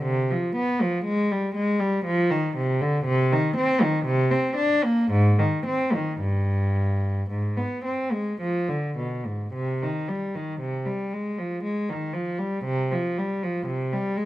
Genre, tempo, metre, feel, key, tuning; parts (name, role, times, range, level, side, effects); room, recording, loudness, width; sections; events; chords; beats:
classical, baroque-style suite movement for unaccompanied cello; 53-60 BPM; 3/4; rubato; C minor; A4 = 440 Hz
dark cello; solo; 0.0-14.3 s; G2 to D4; -22 LUFS; equal
moderate stone room reverb, RT60 1.3 s; close, detailed microphones; -22 LUFS; side -15 dB against mid
0.0-9.5 A section; 9.5-14.3 A section
| 0.02 1.06 2.07 | 3.07 4.07 5.11 | 6.21 7.31 8.40 | 9.53 10.59 11.62 | 12.64 13.66